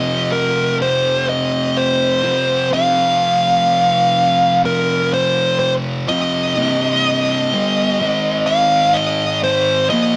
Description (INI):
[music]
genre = metal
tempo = 62 BPM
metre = 4/4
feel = straight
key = unclear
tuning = A4 = 440 Hz
[part]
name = fuzz lead guitar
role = melody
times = 0.0-10.2 s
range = Bb4 to F5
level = -18 LUFS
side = equal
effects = distortion, tape echo
[part]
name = thick fuzz guitar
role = riff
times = 0.0-10.2 s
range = C2 to Bb3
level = -22 LUFS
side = equal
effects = distortion
[sound]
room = light reverb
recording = rough rehearsal-room recording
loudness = -16 LUFS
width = mono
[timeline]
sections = 0.0-6.6 A section; 6.6-10.2 B section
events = none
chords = 0.0 F5; 6.6 Cm; 8.0 Ab5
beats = 0.80 1.76 | 2.73 3.69 4.65 5.61 | 6.57 7.52 8.48 9.44